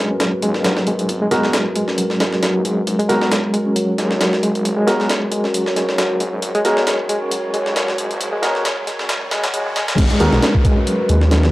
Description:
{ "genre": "breakbeat, breaks", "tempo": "135 BPM", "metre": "4/4", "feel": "swing 55% on 16ths", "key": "G# minor", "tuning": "A4 = 441 Hz", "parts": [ { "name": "dark analog pad", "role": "sustained chords", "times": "0.0-11.5 s", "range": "G#3 to C#5", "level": "-22 LUFS", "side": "equal", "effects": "chorus, sidechain pumping" }, { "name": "bright reed electric piano", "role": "riff", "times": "0.0-11.5 s", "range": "F#3 to C#4", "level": "-20 LUFS", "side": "equal", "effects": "fast tremolo, tube saturation, low-pass filter, tape echo" }, { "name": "breakbeat sampler-style drum kit", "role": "drums", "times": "0.2-11.5 s", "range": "crash cymbal, hi-hat, kick drum, snare drum", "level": "-20 LUFS", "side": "equal", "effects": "high-pass filter on kick, high-pass filter on hats, high-pass filter on snare, high-pass filter on cymbals" }, { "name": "detuned saw bass", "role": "bass", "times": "0.4-11.5 s", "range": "D#1 to D#2", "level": "-22 LUFS", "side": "equal", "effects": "transformer saturation, high-pass filter" }, { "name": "dark baby grand piano", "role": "stabs", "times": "1.3-10.4 s", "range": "B3 to A#4", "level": "-20 LUFS", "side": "equal", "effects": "tape echo" }, { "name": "riser and downlifter", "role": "sound effects", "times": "4.8-11.5 s", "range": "none", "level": "-30 LUFS", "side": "equal", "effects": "none" } ], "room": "light reverb", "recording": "dry, gritty hardware recording, transformer saturation, vinyl crackle, high-pass filter", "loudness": "-15 LUFS", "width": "side -18 dB against mid", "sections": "0.0-10.0 A section; 10.0-11.5 B section", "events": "build-up 0.0-10.0; filter sweep on reed electric piano 0.0-10.0; filter sweep on analog synth pad 0.0-10.0; filter sweep 0.0-10.0; drop 10.0-11.5", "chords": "0.0 G#m9" }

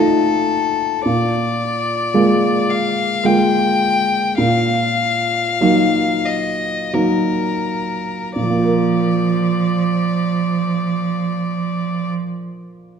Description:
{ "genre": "classical, slow romantic movement for piano trio", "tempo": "39-56 BPM", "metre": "3/4", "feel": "rubato", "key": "Bb major", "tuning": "A4 = 440 Hz", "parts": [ { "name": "clear violin", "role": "melody", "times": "0.0-12.1 s", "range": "A4 to G5", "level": "-20 LUFS", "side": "left 5 dB", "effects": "none" }, { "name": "rich cello", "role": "second line", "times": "0.0-12.1 s", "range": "F3 to A3", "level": "-21 LUFS", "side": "right 6 dB", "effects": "none" }, { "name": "warm concert grand piano", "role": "accompaniment", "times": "0.0-13.0 s", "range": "Bb2 to Bb4", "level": "-18 LUFS", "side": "equal", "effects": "none" } ], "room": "wet concert hall reverb, RT60 1.7 s", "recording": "none", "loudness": "-15 LUFS", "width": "side -7 dB against mid", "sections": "0.0-8.4 A section; 8.4-12.4 B section", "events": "slowing down 0.0-8.4", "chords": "0.0 F7/Bb; 1.1 Bb7; 4.4 Ebm/Bb; 8.4 Bb" }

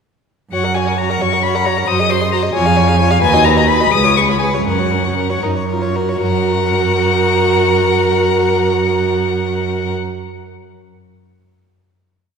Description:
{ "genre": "quick classical-period movement for string quartet", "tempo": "75-91 BPM (dotted quarters)", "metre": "6/8", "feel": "rubato", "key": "F# major", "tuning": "A4 = 440 Hz", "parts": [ { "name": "warm violin", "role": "melody", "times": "0.5-9.9 s", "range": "F#5 to D#6", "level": "-17 LUFS", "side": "left 5 dB", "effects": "none" }, { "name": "clear violin", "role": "second line", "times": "0.5-9.9 s", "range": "A#4 to F#5", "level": "-19 LUFS", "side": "left 4 dB", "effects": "none" }, { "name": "warm viola", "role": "accompaniment", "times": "0.5-9.9 s", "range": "C#4 to A#4", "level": "-19 LUFS", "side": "right 4 dB", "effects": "none" }, { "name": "rich cello", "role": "bass", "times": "0.5-9.9 s", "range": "C#2 to F#2", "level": "-18 LUFS", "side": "right 4 dB", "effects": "none" } ], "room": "wet concert hall reverb, RT60 2.2 s", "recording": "heard from further back in the room", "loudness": "-12 LUFS", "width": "side -6 dB against mid", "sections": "0.5-6.2 A section; 6.2-9.3 final chord", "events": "slowing down 2.5-6.2", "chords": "0.5 F#; 1.9 G#7/F#; 2.5 C#/E#; 3.2 B/D#; 3.9 C#7; 4.7 F#" }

